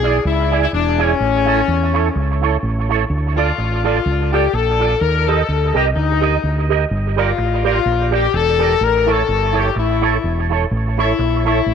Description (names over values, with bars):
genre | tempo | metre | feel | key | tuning
ska | 126 BPM | 4/4 | swing 56% on 8ths | D harmonic minor | A4 = 441 Hz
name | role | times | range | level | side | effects
warm horn section | melody | 0.0-11.7 s | C#4 to Bb4 | -18 LUFS | left 9 dB | none
electric guitar with an envelope filter | accompaniment | 0.0-11.6 s | E4 to Eb5 | -20 LUFS | right 11 dB | ensemble chorus, tape echo
fingered electric bass | bass | 0.0-11.7 s | E1 to E2 | -19 LUFS | right 1 dB | none
room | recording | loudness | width
moderate spring reverb, RT60 2.5 s | 1960s-style stereo with parts hard left and right | -14 LUFS | side -7 dB against mid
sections
0.0-3.1 A section; 3.1-11.7 B section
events
none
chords
0.0 E7; 1.2 A; 3.1 Dm; 5.0 Eb; 6.9 Gm; 8.8 A